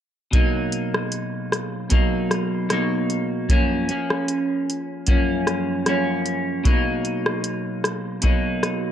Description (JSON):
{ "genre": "indie pop, bedroom pop", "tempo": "76 BPM", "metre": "4/4", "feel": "swing 55% on 16ths", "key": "unclear", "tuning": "A4 = 440 Hz", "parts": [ { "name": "clean electric guitar", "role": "accompaniment", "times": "0.3-8.9 s", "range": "F#2 to D#4", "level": "-22 LUFS", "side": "equal", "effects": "lush chorus, warbly pitch drift" }, { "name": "soft vintage rhythm box", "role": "drums", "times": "0.3-8.8 s", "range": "hi-hat, kick drum, rim click", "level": "-22 LUFS", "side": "equal", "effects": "none" } ], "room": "light reverb, digital ambience", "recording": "none", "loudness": "-20 LUFS", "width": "side -10 dB against mid", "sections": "0.3-8.9 A section", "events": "none", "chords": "0.3 Bmaj7; 3.5 F#maj7; 6.7 Bmaj7" }